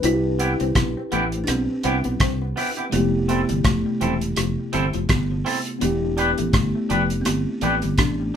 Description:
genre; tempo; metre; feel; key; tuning
lovers rock reggae; 83 BPM; 4/4; swing 57% on 16ths; C major; A4 = 441 Hz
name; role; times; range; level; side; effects
mellow tine electric piano; accompaniment; 0.0-8.4 s; C3 to B4; -28 LUFS; left 2 dB; medium stereo tremolo
electric guitar through a small old amp; riff; 0.0-8.2 s; E3 to C4; -30 LUFS; left 7 dB; dub echo
fingered electric bass; bass; 0.0-8.3 s; E1 to C2; -26 LUFS; equal; none
damped 70s drum kit; drums; 0.0-8.2 s; hi-hat, kick drum, rim click; -23 LUFS; equal; dub echo
buzzing kalimba; melody; 0.1-8.4 s; A3 to E4; -26 LUFS; right 1 dB; none
twangy electric guitar; stabs; 0.4-7.8 s; B3 to B4; -24 LUFS; right 1 dB; none
room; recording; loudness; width
moderate studio ambience, RT60 0.5 s; band playing live in one room; -19 LUFS; side -8 dB against mid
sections
0.0-8.4 A section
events
none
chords
0.0 Cmaj7; 2.9 Fmaj7; 5.8 Em7

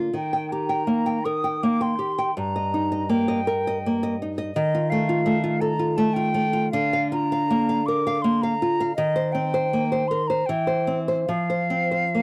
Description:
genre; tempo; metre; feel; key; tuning
romantic duo for flute and classical guitar; 68-85 BPM; 3/4; rubato; unclear; A4 = 437 Hz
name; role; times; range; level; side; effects
nylon-string guitar; accompaniment; 0.0-12.2 s; G2 to G5; -25 LUFS; equal; none
hollow concert flute; melody; 0.2-12.2 s; Eb5 to Eb6; -28 LUFS; equal; none
room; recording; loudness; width
little or no reverb; dry, close 1970s-style studio recording; -23 LUFS; mono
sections
0.0-12.2 A section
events
none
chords
0.2 Eb; 2.4 Eb/G; 4.6 F7/Eb; 6.7 Bb/D; 9.0 Cm7/Eb; 10.5 C/E; 11.3 F5

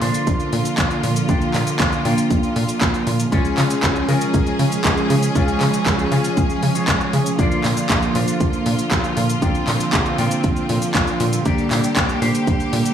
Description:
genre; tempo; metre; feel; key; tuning
italo disco; 118 BPM; 4/4; straight; unclear; A4 = 440 Hz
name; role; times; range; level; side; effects
clear symphonic string section; sustained chords; 0.0-12.9 s; D3 to Ab4; -21 LUFS; right 2 dB; none
electric guitar with an envelope filter; stabs; 0.0-12.9 s; Ab3 to G5; -24 LUFS; left 4 dB; wide subtle chorus, tape echo
tight sequencer bass; bass; 0.0-12.8 s; Bb1 to Db3; -23 LUFS; equal; tube saturation, tape echo
house drum kit; drums; 0.0-12.9 s; cabasa, handclaps, hi-hat; -23 LUFS; equal; overdrive, studio reverb, gated reverb
electronic kick drum; drums; 0.3-12.6 s; none; -22 LUFS; right 1 dB; overdrive, studio reverb
room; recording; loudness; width
light reverb, digital ambience; small room ambience; -16 LUFS; side -9 dB against mid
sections
0.0-12.9 A section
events
none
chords
0.0 Bb; 3.3 Db; 7.4 Bb; 11.5 Gm/Bb

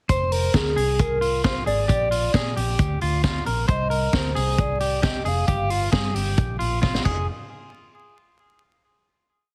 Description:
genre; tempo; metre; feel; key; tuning
jangly indie pop; 134 BPM; 4/4; straight; F dorian; A4 = 441 Hz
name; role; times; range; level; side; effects
hollow clarinet-like synth lead; melody; 0.1-6.2 s; Ab4 to F5; -28 LUFS; equal; chorus
electric guitar at the edge of break-up; arpeggios; 0.1-7.3 s; F4 to C5; -30 LUFS; equal; none
vintage muted fingered electric bass; bass; 0.1-7.3 s; F1 to Bb2; -28 LUFS; equal; none
vintage drum kit; drums; 0.1-7.2 s; crash cymbal, hi-hat, kick drum, snare drum; -27 LUFS; equal; none
room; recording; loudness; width
small room ambience; heavily compressed radio sound, multiband compression, vinyl crackle; -22 LUFS; mono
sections
0.1-7.3 verse; 7.3-9.1 final hit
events
drum fill 6.8-7.3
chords
0.1 Fm; 1.9 Bb; 3.7 Cm; 5.5 Gm7; 7.1 Fm; 7.3 N.C.

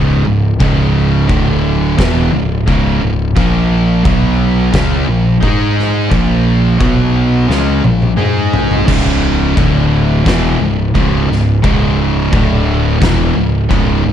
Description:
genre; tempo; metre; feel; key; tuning
stoner and doom metal; 87 BPM; 4/4; straight; C# dorian; A4 = 439 Hz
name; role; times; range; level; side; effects
distorted electric guitar; riff; 0.0-14.1 s; C#2 to G#4; -19 LUFS; equal; overdrive
thick fuzz guitar; riff; 0.0-14.1 s; C#2 to G#4; -17 LUFS; left 8 dB; distortion
thick fuzz guitar; riff; 0.0-14.1 s; C#2 to G#4; -16 LUFS; right 6 dB; distortion
growling picked electric bass; bass; 0.0-14.1 s; C#1 to G#2; -17 LUFS; equal; overdrive
oversized low-tuned drum kit; drums; 0.6-13.9 s; crash cymbal, kick drum, snare drum, toms; -17 LUFS; equal; none
room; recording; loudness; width
small room ambience; dark, warm production; -10 LUFS; side -9 dB against mid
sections
0.0-8.9 A section; 8.9-14.1 A section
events
drum fill 7.5-8.9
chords
0.0 C#5; 1.3 D5; 2.0 C#m; 3.4 A#5; 4.0 B5; 4.7 A#5; 5.4 G#5; 6.1 A#5; 6.8 B5; 7.5 A#5; 8.2 G#5; 8.9 C#5; 9.6 D5; 10.2 C#m; 12.3 D5; 13.0 C#m

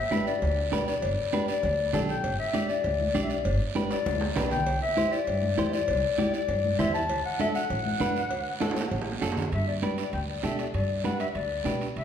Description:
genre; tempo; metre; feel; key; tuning
latin, cumbia; 198 BPM; 4/4; straight; G major; A4 = 435 Hz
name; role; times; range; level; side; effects
breathy clarinet; second line; 0.0-12.0 s; D5 to A5; -29 LUFS; left 4 dB; none
clean electric guitar; accompaniment; 0.1-11.9 s; D4 to D5; -32 LUFS; right 4 dB; none
congas; percussion; 0.1-12.0 s; none; -34 LUFS; left 2 dB; none
guiro; percussion; 0.1-12.0 s; none; -41 LUFS; right 6 dB; none
upright bass; bass; 0.4-12.0 s; G1 to B2; -31 LUFS; equal; none
cowbell and timbales; percussion; 0.4-12.0 s; none; -38 LUFS; right 4 dB; none
room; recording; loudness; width
wet recital hall reverb, RT60 1.5 s; recorded in a church or concert hall; -25 LUFS; side -8 dB against mid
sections
0.0-9.5 A section; 9.5-12.0 B section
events
clarinet solo 0.0-9.5, 9.5-12.0; drum fill 3.9-4.7, 8.6-9.5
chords
0.0 G; 4.7 C; 7.1 D; 9.5 G

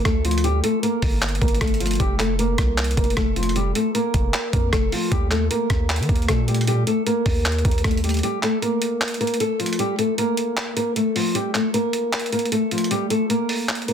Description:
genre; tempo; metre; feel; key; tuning
hip hop, trap; 154 BPM; 4/4; half-time; unclear; A4 = 442 Hz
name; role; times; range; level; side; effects
nylon-string guitar; melody; 0.0-13.9 s; F3 to Bb4; -22 LUFS; left 1 dB; low-pass filter, ping-pong delay
long sustained 808-style bass; bass; 0.0-8.2 s; F1 to Eb3; -23 LUFS; equal; none
boom bap sampler-style drum kit; drums; 0.1-13.9 s; handclaps, hi-hat, kick drum, rim click; -23 LUFS; equal; soft clipping on snare
room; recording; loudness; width
digital ambience; dense, heavily limited modern master; -19 LUFS; side -8 dB against mid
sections
0.0-8.2 A section; 8.2-13.9 B section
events
kick muted 8.2-13.9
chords
0.0 Gm7; 2.0 F; 5.1 Eb; 8.2 Bb5

